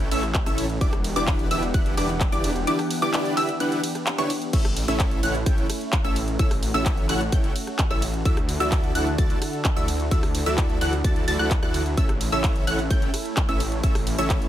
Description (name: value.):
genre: EDM, festival progressive house.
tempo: 129 BPM.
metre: 4/4.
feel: straight.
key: A mixolydian.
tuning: A4 = 440 Hz.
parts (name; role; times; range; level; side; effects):
lush unison pad; sustained chords; 0.0-14.5 s; D3 to F#5; -31 LUFS; equal; chorus, sidechain pumping.
wide unison pluck; arpeggios; 0.0-14.5 s; C#6 to A6; -30 LUFS; equal; sidechain pumping, dub echo.
dense compressed supersaw; riff; 0.0-14.5 s; C#4 to A5; -28 LUFS; equal; sidechain pumping, dub echo.
wide detuned saw bass; bass; 0.0-14.5 s; E1 to D2; -28 LUFS; equal; chorus, sidechain pumping.
big-room dance drum kit; drums; 0.0-14.5 s; crash cymbal, handclaps, hi-hat, ride cymbal, rim click; -30 LUFS; equal; none.
electronic kick drum; drums; 0.3-14.4 s; none; -23 LUFS; equal; none.
room: light reverb.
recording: none.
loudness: -20 LUFS.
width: side -12 dB against mid.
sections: 0.0-4.5 A section; 4.5-14.5 A section.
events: drop 0.0-4.5, 4.5-14.5.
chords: 0.0 A; 0.8 Em7; 4.5 A; 8.3 Dadd9; 12.0 A.